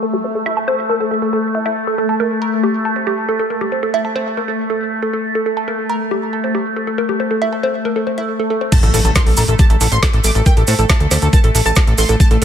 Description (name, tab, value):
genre	psychedelic trance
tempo	138 BPM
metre	4/4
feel	straight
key	A phrygian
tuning	A4 = 442 Hz
part	overtone-sweeping drone	sustained chords	0.0-12.4 s	A3	-20 LUFS	left 1 dB	chorus, built-in reverb, phaser, sidechain pumping
part	woody wave-folded pluck	riff	0.0-12.4 s	G4 to Bb5	-20 LUFS	moving between left 4 dB and right 6 dB	chorus, auto-pan, sidechain pumping, tape echo
part	wide unison lead	melody	8.7-12.4 s	A4 to D6	-21 LUFS	equal	phaser, sidechain pumping, tape echo
part	electronic kick drum	drums	8.7-12.3 s	none	-12 LUFS	equal	overdrive, small room reverb
part	garage drum kit	drums	8.7-12.4 s	crash cymbal, hi-hat, snare drum	-21 LUFS	right 1 dB	overdrive, low-pass filter on hats, small room reverb, low-pass filter on cymbals, low-pass filter on snare
part	cabasa	percussion	8.7-12.3 s	none	-23 LUFS	right 4 dB	none
part	impact	sound effects	8.7-10.5 s	none	-22 LUFS	equal	none
part	plucky analog bass	bass	8.8-12.4 s	A1 to A2	-15 LUFS	equal	none
room	moderate lush hall reverb, RT60 2.2 s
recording	none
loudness	-14 LUFS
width	side -9 dB against mid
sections	0.0-8.7 A section; 8.7-12.4 B section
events	filter sweep on synth arpeggio sound 0.0-8.7; drop 8.7-12.4; impact 8.7-10.5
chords	0.0 A5